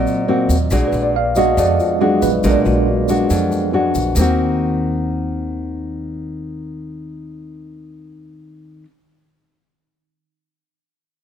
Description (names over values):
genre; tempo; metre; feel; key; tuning
bossa nova; 139 BPM; 4/4; straight; Eb dorian; A4 = 441 Hz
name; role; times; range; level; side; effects
nylon-string guitar; accompaniment; 0.0-8.9 s; F2 to Gb4; -19 LUFS; left 2 dB; none
tine electric piano; accompaniment; 0.0-4.2 s; Gb3 to F5; -18 LUFS; right 3 dB; medium stereo tremolo
upright bass; bass; 0.0-8.8 s; Bb1 to F2; -21 LUFS; equal; none
egg shaker; percussion; 0.1-4.3 s; none; -31 LUFS; left 4 dB; none
room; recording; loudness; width
light reverb; none; -15 LUFS; side -9 dB against mid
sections
0.0-4.2 A section; 4.2-7.6 B section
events
tine electric piano solo 0.0-4.2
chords
0.0 Ebm6; 0.7 Bb7b9b13; 4.2 Ebm6